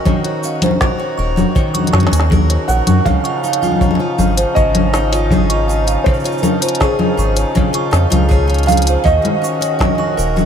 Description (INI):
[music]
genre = folktronica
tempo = 80 BPM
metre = 4/4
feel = straight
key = Db major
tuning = A4 = 441 Hz
[part]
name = felt-muted upright piano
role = melody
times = 0.0-10.5 s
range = Ab4 to Gb5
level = -20 LUFS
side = right 2 dB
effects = lush chorus, analog delay
[part]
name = music box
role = second line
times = 0.0-10.5 s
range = Ab4 to Db6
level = -23 LUFS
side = right 2 dB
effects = tape echo
[part]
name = pedal harmonium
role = sustained chords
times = 0.0-10.5 s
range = Eb3 to Gb4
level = -24 LUFS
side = left 1 dB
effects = stereo widening
[part]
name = picked steel-string acoustic guitar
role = arpeggios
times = 0.0-10.5 s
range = Db3 to Bb4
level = -22 LUFS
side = equal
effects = analog delay
[part]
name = kick drum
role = drums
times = 0.1-10.0 s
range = none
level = -17 LUFS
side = equal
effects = none
[part]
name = organic electronic drum kit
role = drums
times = 0.1-10.5 s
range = congas, hi-hat, shaker, snare drum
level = -18 LUFS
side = left 2 dB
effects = none
[part]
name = round analog bass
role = bass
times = 1.2-10.4 s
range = Eb1 to Gb2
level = -16 LUFS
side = equal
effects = none
[sound]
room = moderate huge ambient reverb, RT60 9.4 s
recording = dreamy mix soaked in reverb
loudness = -12 LUFS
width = side -8 dB against mid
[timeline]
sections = 0.0-10.5 A section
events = none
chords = 0.0 Ebm7; 3.1 Dbadd9; 9.1 Ebm7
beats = | 0.06 0.81 1.55 2.31 | 3.06 3.81 4.55 5.30 | 6.05 6.80 7.55 8.30 | 9.05 9.80